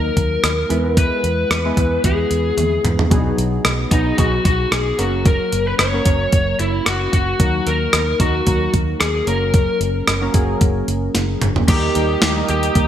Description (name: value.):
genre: 1980s-style pop.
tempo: 112 BPM.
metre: 4/4.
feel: swing 55% on 16ths.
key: unclear.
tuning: A4 = 440 Hz.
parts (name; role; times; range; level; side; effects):
lead guitar through a small cranked amp; melody; 0.0-12.9 s; D#4 to C#5; -20 LUFS; left 2 dB; overdrive, digital delay.
warm analog keys; accompaniment; 0.0-12.9 s; F#3 to B4; -23 LUFS; equal; chorus.
vintage muted fingered electric bass; bass; 0.0-12.9 s; F#1 to E2; -22 LUFS; equal; none.
clean 12-bit digital drum machine; drums; 0.2-12.9 s; crash cymbal, hi-hat, kick drum, rim click, snare drum, toms; -18 LUFS; equal; gated reverb.
warm analog pad; sustained chords; 11.7-12.9 s; A#4 to D#6; -25 LUFS; equal; chorus.
room: moderate lush hall reverb, RT60 1.7 s.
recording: bright 1980s-style digital production.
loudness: -15 LUFS.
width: side -10 dB against mid.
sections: 0.0-11.7 A section; 11.7-12.9 B section.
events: drum fill 2.6-3.1, 11.1-11.7.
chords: 0.0 D#m; 0.7 E; 3.1 B6; 5.0 F#; 7.4 D#m; 9.3 F#; 11.7 D#.